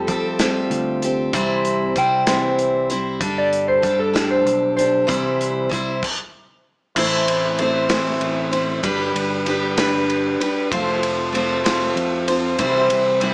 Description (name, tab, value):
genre	folk rock and heartland rock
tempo	64 BPM (dotted quarters)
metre	6/8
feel	straight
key	C major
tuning	A4 = 439 Hz
part	electric guitar through a small old amp	second line	0.0-5.1 s	A4 to G5	-19 LUFS	equal	none
part	picked steel-string acoustic guitar	accompaniment	0.0-13.3 s	A2 to C5	-19 LUFS	equal	none
part	mellow tonewheel organ	sustained chords	0.0-13.3 s	F3 to E5	-30 LUFS	equal	slow rotary speaker
part	picked electric bass	bass	0.0-13.3 s	F1 to F3	-30 LUFS	equal	none
part	natural country drum kit	drums	0.1-13.3 s	crash cymbal, hi-hat, kick drum, ride cymbal, snare drum	-24 LUFS	equal	none
room	light reverb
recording	small speaker sound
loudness	-17 LUFS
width	side -32 dB against mid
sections	0.0-7.0 A section; 7.0-13.3 B section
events	clean electric guitar solo 0.0-7.0; stop 6.0-7.0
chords	0.0 Fadd9; 1.3 C; 3.2 Gsus2; 5.1 C; 7.0 Am; 8.8 G; 10.7 F; 12.6 C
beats	0.40 | 1.34 2.28 | 3.21 4.15 | 5.09 6.03 | 6.96 7.90 | 8.84 9.77 | 10.71 11.65 | 12.59